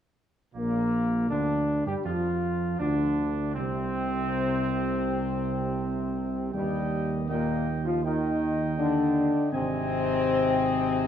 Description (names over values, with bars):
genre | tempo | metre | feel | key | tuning
classical | 80 BPM | 4/4 | straight | Bb major | A4 = 440 Hz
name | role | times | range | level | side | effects
mellow trumpet section | melody | 0.5-11.1 s | Bb3 to Ab5 | -34 LUFS | right 1 dB | none
warm trombone section | sustained chords | 0.5-11.1 s | G2 to G3 | -35 LUFS | right 4 dB | none
mellow French horn section | sustained chords | 0.6-11.1 s | G3 to G4 | -27 LUFS | left 4 dB | none
mellow tuba | bass | 0.6-11.1 s | Ab1 to G2 | -31 LUFS | right 5 dB | none
room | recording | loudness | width
wet recital hall reverb, RT60 1.6 s | dark, warm production | -25 LUFS | side -9 dB against mid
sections
0.6-11.1 A section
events
none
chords
0.6 Bb; 3.6 N.C.; 6.5 Eb; 9.5 Ab